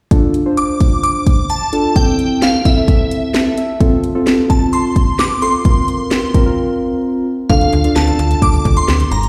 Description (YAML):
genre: synth-pop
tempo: 130 BPM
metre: 4/4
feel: straight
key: D minor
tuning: A4 = 440 Hz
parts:
  - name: muted felt-like synth keys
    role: accompaniment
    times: 0.1-8.9 s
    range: C4 to A5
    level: -19 LUFS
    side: equal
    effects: chorus
  - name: house drum kit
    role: drums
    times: 0.1-9.3 s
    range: hi-hat, kick drum, snare drum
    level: -16 LUFS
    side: equal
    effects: none
  - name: shimmering bell with halo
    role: melody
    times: 0.6-9.3 s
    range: E5 to D6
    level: -21 LUFS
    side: equal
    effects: ensemble chorus, phaser, slapback echo
  - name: slap-like FM bass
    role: bass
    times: 7.5-9.3 s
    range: G1 to D2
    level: -17 LUFS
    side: equal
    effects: none
room: light reverb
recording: played on a big sound system in a bare room, large studio reverb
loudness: -14 LUFS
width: mono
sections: 0.1-7.5 A section; 7.5-9.3 B section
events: synth keys fill 3.1-3.8; break 6.6-7.5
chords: 0.1 Dm; 2.0 Am; 3.8 F; 5.7 Bbsus2; 7.5 Dm